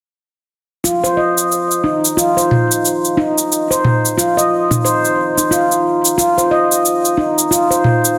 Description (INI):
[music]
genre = organic downtempo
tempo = 90 BPM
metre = 4/4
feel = swing 58% on 16ths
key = unclear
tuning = A4 = 438 Hz
[part]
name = handpan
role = arpeggios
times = 0.8-7.8 s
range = Eb4 to Eb5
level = -16 LUFS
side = equal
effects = low-pass filter, delay
[part]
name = electronic cabasa and toms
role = drums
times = 0.8-8.2 s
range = none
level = -18 LUFS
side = equal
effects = none
[sound]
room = wet lush hall reverb, RT60 1.8 s, digital ambience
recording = dense, heavily limited modern master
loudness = -15 LUFS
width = mono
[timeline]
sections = 0.8-8.2 A section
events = none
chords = none